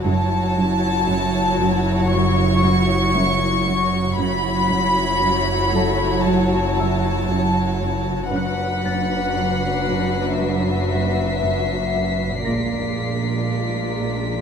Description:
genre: cinematic, suspense film score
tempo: 58 BPM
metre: 4/4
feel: straight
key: unclear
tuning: A4 = 438 Hz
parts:
  - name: warm symphonic violin section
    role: melody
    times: 0.0-14.4 s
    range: D5 to C#6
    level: -23 LUFS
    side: left 3 dB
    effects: none
  - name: dark symphonic viola section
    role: accompaniment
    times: 0.0-14.4 s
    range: F#3 to E4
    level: -26 LUFS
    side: left 2 dB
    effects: none
  - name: worn celesta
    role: texture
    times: 0.0-14.4 s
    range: A4 to A#6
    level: -32 LUFS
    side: left 6 dB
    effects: none
  - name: warm chamber violin section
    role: second line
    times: 0.1-14.4 s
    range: E#4 to C#5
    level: -27 LUFS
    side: equal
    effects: none
  - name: warm symphonic cello section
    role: riff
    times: 0.1-14.3 s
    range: F#2 to F#3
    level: -27 LUFS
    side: right 1 dB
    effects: none
  - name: dark symphonic double bass section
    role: bass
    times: 0.1-14.4 s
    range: F#1 to A#1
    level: -27 LUFS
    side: right 4 dB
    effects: none
  - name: warm symphonic cello section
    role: bass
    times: 0.1-14.4 s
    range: F#2 to A#2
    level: -25 LUFS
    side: right 4 dB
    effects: none
  - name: organ-like drone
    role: drone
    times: 0.1-14.4 s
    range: F#1 to A#1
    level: -29 LUFS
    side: left 1 dB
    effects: ensemble chorus, built-in reverb
  - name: warm chamber violin section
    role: texture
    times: 8.3-14.4 s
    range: B6 to B#6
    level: -31 LUFS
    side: left 2 dB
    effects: none
room: moderate scoring stage reverb, RT60 1.6 s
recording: close, detailed microphones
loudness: -17 LUFS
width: side -7 dB against mid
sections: 0.0-14.4 A section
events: none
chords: 0.1 F#m7; 8.3 Bm/F#; 12.5 A#7

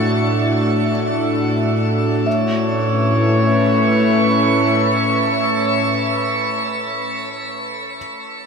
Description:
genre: ambient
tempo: free time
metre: none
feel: none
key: A major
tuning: A4 = 442 Hz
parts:
  - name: airy breathy pad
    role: sustained chords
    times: 0.0-6.2 s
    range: A2 to E5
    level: -18 LUFS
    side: equal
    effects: chorus
  - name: felt-muted upright piano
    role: arpeggios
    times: 0.0-8.0 s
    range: A4 to E5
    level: -31 LUFS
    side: right 1 dB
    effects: tape echo
  - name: analog drone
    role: drone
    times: 0.0-5.9 s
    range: A3 to E4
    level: -24 LUFS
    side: left 1 dB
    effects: chorus
  - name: warm flugelhorn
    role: melody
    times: 2.3-5.9 s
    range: C#5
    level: -21 LUFS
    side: right 1 dB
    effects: tape echo
room: wet shimmer reverb, RT60 7.1 s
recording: none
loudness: -15 LUFS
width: side -5 dB against mid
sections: 0.0-2.3 A section; 2.3-5.5 B section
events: none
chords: 0.0 Dadd9/A; 2.3 Aadd9

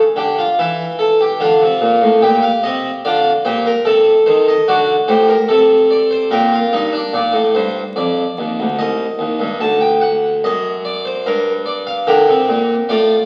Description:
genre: classical, baroque-style 3-part fugue for harpsichord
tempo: 73 BPM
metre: 3/4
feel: straight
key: G minor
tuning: A4 = 440 Hz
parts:
  - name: harpsichord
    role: solo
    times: 0.2-13.3 s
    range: C2 to A5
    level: -15 LUFS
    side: equal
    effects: none
room: wet recital hall reverb, RT60 1.7 s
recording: very old 78 rpm record, vinyl crackle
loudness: -15 LUFS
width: mono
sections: 0.0-7.2 A section; 7.2-13.3 B section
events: none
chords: 0.0 A7(no3); 1.4 Dm; 2.2 Gm/Bb; 3.9 Adim/C; 4.7 D7; 6.3 Gm/Bb; 7.2 Ebmaj7; 8.8 Cm; 9.6 D7; 11.2 Gm

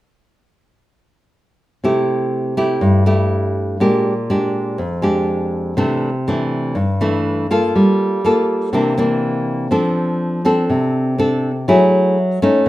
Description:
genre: bossa nova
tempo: 122 BPM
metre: 4/4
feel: straight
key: C major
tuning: A4 = 437 Hz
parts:
  - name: nylon-string guitar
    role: solo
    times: 1.8-12.7 s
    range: F2 to A4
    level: -14 LUFS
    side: equal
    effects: none
room: moderate large studio reverb, RT60 0.8 s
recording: minimal, uncompressed stereo recording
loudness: -15 LUFS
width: side -16 dB against mid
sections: 1.8-5.8 A section; 5.8-12.7 B section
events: none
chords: 1.8 C6; 3.8 Bb6; 5.8 C69; 7.7 Gm9; 8.7 C9; 9.7 F6; 11.7 F#m9

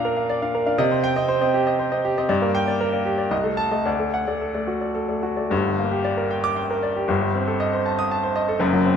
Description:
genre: classical, virtuoso piano study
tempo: 106-121 BPM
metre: 3/4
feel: rubato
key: G minor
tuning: A4 = 440 Hz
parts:
  - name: clear baby grand piano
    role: solo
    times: 0.0-9.0 s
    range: F#1 to Eb6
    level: -20 LUFS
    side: equal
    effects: none
room: moderate recital hall reverb, RT60 1.5 s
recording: none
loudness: -20 LUFS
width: side -7 dB against mid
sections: 0.0-5.5 A section; 5.5-9.0 B section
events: none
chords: 0.0 Bb; 0.8 Cm; 2.3 Gm; 3.3 Adim/C; 3.9 D; 5.5 Gm; 7.1 Am7b5/G

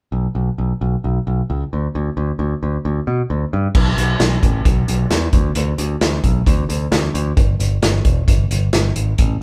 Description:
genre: classic rock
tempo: 132 BPM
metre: 4/4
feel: straight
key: B minor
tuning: A4 = 440 Hz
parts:
  - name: modern bright picked electric bass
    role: bass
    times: 0.1-9.4 s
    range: E1 to B2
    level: -20 LUFS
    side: equal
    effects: none
  - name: vintage drum kit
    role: drums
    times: 3.7-9.3 s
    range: crash cymbal, hi-hat, kick drum, snare drum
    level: -19 LUFS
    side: equal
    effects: none
room: moderate large studio reverb, RT60 0.9 s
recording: band playing live in one room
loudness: -18 LUFS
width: mono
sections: 0.1-3.7 A section; 3.7-9.4 B section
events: none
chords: none

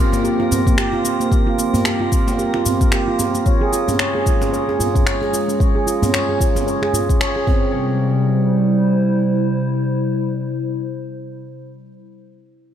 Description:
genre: organic downtempo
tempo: 112 BPM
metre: 4/4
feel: swing 58% on 16ths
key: C phrygian dominant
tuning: A4 = 439 Hz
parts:
  - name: warbly tape-like pad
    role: sustained chords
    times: 0.1-12.1 s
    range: C3 to Db5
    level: -22 LUFS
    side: equal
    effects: chorus, built-in reverb, sidechain pumping
  - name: handpan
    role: arpeggios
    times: 0.0-8.0 s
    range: Bb3 to Db5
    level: -19 LUFS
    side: right 2 dB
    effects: vintage 12-bit sampler grit, low-pass filter, ping-pong delay
  - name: drifting glass-harmonics texture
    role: texture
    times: 0.0-7.8 s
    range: Bb3 to Bb4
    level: -32 LUFS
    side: left 1 dB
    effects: chorus, built-in reverb
  - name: electronic shaker and finger snaps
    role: drums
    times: 0.1-7.3 s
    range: none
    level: -25 LUFS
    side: left 2 dB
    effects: none
  - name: djembe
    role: percussion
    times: 0.1-7.6 s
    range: none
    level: -26 LUFS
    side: equal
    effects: none
  - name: electronic kick drum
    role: drums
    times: 0.7-7.6 s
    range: none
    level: -18 LUFS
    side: equal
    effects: none
room: moderate plate reverb, RT60 2.9 s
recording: dreamy mix soaked in reverb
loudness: -16 LUFS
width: side -10 dB against mid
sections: 0.0-7.7 A section; 7.7-12.0 B section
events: filter sweep on ambient pad 0.0-7.7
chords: 0.0 C7sus4; 3.5 Db; 7.5 C5; 7.7 C

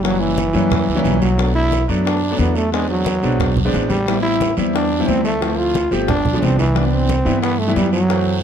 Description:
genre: Afro-Cuban jazz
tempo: 179 BPM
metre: 4/4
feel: straight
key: unclear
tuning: A4 = 441 Hz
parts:
  - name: growling trombone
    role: melody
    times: 0.0-8.4 s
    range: E3 to F4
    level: -20 LUFS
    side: right 1 dB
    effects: tape echo
  - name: clear baby grand piano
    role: accompaniment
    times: 0.0-8.4 s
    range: E3 to G4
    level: -21 LUFS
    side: left 1 dB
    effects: none
  - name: upright bass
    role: bass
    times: 0.0-8.4 s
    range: F#1 to G2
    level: -20 LUFS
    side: right 1 dB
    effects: none
  - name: bongos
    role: percussion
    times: 0.0-8.3 s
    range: none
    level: -28 LUFS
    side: left 6 dB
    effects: none
  - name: congas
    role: percussion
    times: 0.0-8.4 s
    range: none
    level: -25 LUFS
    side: right 1 dB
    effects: none
  - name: guiro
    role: percussion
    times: 0.0-8.4 s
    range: none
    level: -32 LUFS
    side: right 6 dB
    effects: none
room: light reverb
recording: dark, warm production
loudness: -15 LUFS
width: side -8 dB against mid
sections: 0.0-8.4 A section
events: none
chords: 0.0 F#7b9; 1.4 Bm7; 2.7 E7b13; 4.1 Am9; 5.4 Dm7; 6.1 G7b9; 6.8 Cmaj9

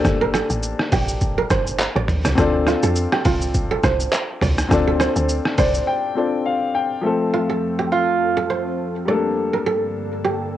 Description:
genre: afrobeats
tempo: 103 BPM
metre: 4/4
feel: swing 55% on 16ths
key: D minor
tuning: A4 = 441 Hz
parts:
  - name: warm grand piano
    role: accompaniment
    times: 0.0-10.6 s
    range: F3 to G5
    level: -22 LUFS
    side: left 4 dB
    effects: cassette tape
  - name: woody log drum bass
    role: bass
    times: 0.0-5.8 s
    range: G1 to F2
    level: -23 LUFS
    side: equal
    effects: none
  - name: trip hop sampler-style drum kit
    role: drums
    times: 0.0-5.9 s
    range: handclaps, hi-hat, kick drum, rim click, shaker, toms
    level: -21 LUFS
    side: equal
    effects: overdrive, cassette tape
  - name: kora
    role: riff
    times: 0.2-10.4 s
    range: F4 to D5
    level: -23 LUFS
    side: right 6 dB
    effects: cassette tape, tape echo
  - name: ethereal airy pad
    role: sustained chords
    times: 7.4-10.6 s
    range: F2 to A4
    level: -28 LUFS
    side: left 1 dB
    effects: ensemble chorus, built-in reverb, cassette tape
room: little or no reverb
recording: home recording on cassette, nothing above 10.9 kHz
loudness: -17 LUFS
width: side -12 dB against mid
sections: 0.0-7.0 A section; 7.0-10.6 B section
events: grand piano fill 5.3-7.0; break 5.9-7.0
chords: 0.0 Gmadd9; 2.4 Dm7; 7.0 F; 9.1 Gmadd9

